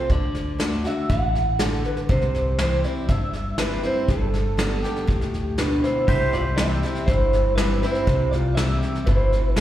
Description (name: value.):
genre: honky-tonk and classic country.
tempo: 120 BPM.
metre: 4/4.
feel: straight.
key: unclear.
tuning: A4 = 440 Hz.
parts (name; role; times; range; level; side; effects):
electric guitar through a small old amp; melody; 0.0-9.6 s; D4 to F#5; -25 LUFS; right 1 dB; vibrato effect, slapback echo, tape echo.
picked steel-string acoustic guitar; accompaniment; 0.0-9.6 s; G2 to G4; -28 LUFS; left 1 dB; slapback echo.
upright bass; bass; 0.1-9.6 s; G1 to D2; -24 LUFS; equal; none.
soft brush drum kit; drums; 0.1-9.6 s; crash cymbal, hi-hat, kick drum, snare drum; -25 LUFS; equal; none.
pedal steel guitar; sustained chords; 6.1-9.6 s; G4 to E5; -31 LUFS; right 1 dB; lush chorus.
room: moderate club reverb, RT60 0.8 s.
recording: live gig heard through the venue's PA, recital hall reverb.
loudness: -20 LUFS.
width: side -12 dB against mid.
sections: 0.0-6.1 A section; 6.1-9.6 B section.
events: none.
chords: 0.1 D; 2.1 C; 4.1 G; 6.1 C.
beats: | 0.10 0.60 1.10 1.60 | 2.09 2.59 3.09 3.59 | 4.09 4.59 5.09 5.58 | 6.08 6.58 7.08 7.58 | 8.08 8.58 9.08 9.58.